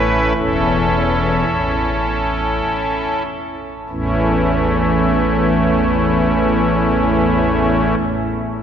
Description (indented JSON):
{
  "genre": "classical, chorale-style piece for pipe organ",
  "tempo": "47-57 BPM",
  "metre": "4/4",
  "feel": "rubato",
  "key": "A major",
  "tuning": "A4 = 441 Hz",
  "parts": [
    { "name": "pipe organ, strings celeste", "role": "solo", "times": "0.0-8.0 s", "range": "E1 to B4", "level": "-15 LUFS", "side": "equal", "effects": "none" }
  ],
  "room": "wet cathedral reverb, RT60 4.3 s",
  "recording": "none",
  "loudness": "-14 LUFS",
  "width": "side -8 dB against mid",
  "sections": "0.0-3.9 A section; 3.9-8.6 B section",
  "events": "slowing down 0.0-3.9",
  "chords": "0.0 A",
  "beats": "0.36 1.46 2.63 | 3.90 5.17 6.43 7.69"
}